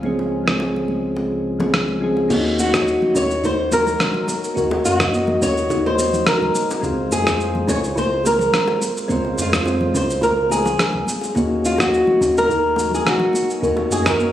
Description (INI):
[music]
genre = sunset chillout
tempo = 106 BPM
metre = 4/4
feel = swing 54% on 16ths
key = unclear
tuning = A4 = 440 Hz
[part]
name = soft electric-piano-like synth keys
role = accompaniment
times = 0.0-14.3 s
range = F3 to Eb5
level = -23 LUFS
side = equal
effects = chorus, auto-pan, digital delay
[part]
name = round analog bass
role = bass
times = 0.0-14.3 s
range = Db2 to Gb2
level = -28 LUFS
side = equal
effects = none
[part]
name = congas and bongos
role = percussion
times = 0.0-13.9 s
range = none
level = -28 LUFS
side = left 1 dB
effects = none
[part]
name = dusty soul sampler-style drum kit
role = drums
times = 0.5-14.3 s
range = cabasa, crash cymbal, rim click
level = -23 LUFS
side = equal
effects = none
[part]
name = buzzing kalimba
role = arpeggios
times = 2.3-14.3 s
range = Bb3 to C5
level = -25 LUFS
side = equal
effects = digital delay
[part]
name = electronic kick drum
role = drums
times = 2.3-14.2 s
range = none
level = -30 LUFS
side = equal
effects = none
[part]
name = flamenco guitar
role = melody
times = 2.6-14.3 s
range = F4 to Db5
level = -20 LUFS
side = equal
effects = tape echo
[sound]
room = moderate plate reverb, RT60 2.7 s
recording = recorded on a phone in the room, studio reverb, compression, faint mains hum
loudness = -16 LUFS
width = side -12 dB against mid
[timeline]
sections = 0.0-2.3 A section; 2.3-14.3 B section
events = filter sweep on synth keys 0.0-2.3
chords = 0.0 Dbmaj7; 2.3 Ebm7; 6.8 Dbmaj7; 11.4 Ebm7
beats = | 0.04 0.61 1.17 1.74 | 2.31 2.87 3.44 4.00 | 4.57 5.13 5.70 6.27 | 6.83 7.40 7.96 8.53 | 9.10 9.66 10.23 10.80 | 11.36 11.93 12.49 13.06 | 13.63 14.19